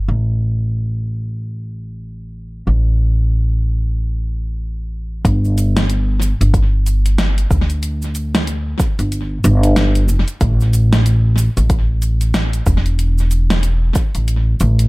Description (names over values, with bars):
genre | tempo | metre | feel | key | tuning
organic downtempo | 93 BPM | 4/4 | swing 60% on 16ths | unclear | A4 = 442 Hz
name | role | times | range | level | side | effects
upright bass | bass | 0.0-14.9 s | E1 to D2 | -15 LUFS | equal | none
electronic kick drum | drums | 5.2-14.1 s | none | -17 LUFS | equal | none
deep house drum kit | drums | 5.3-14.9 s | cabasa, hi-hat, snare drum | -21 LUFS | equal | tape echo
room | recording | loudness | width
little or no reverb | echo-heavy mix | -14 LUFS | side -22 dB against mid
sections
0.0-5.2 A section; 5.2-14.9 B section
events
none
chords
none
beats
| 0.09 0.73 1.38 2.02 | 2.67 3.31 3.96 4.60 | 5.25 5.89 6.54 7.18 | 7.83 8.47 9.12 9.76 | 10.41 11.05 11.70 12.34 | 12.99 13.63 14.28